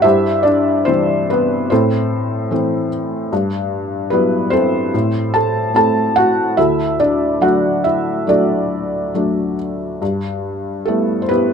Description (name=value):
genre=classical, lyrical solo piano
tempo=72 BPM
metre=4/4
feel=uneven beats, rubato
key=unclear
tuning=A4 = 440 Hz
part: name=felt-muted upright piano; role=solo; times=0.0-11.5 s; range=D2 to A5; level=-14 LUFS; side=equal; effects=none
room=little or no reverb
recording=close, detailed microphones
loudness=-14 LUFS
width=side -6 dB against mid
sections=0.0-11.5 A section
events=none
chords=0.0 C/G; 1.7 Am; 3.3 Emadd9/G; 4.9 Am; 6.6 D; 10.0 G6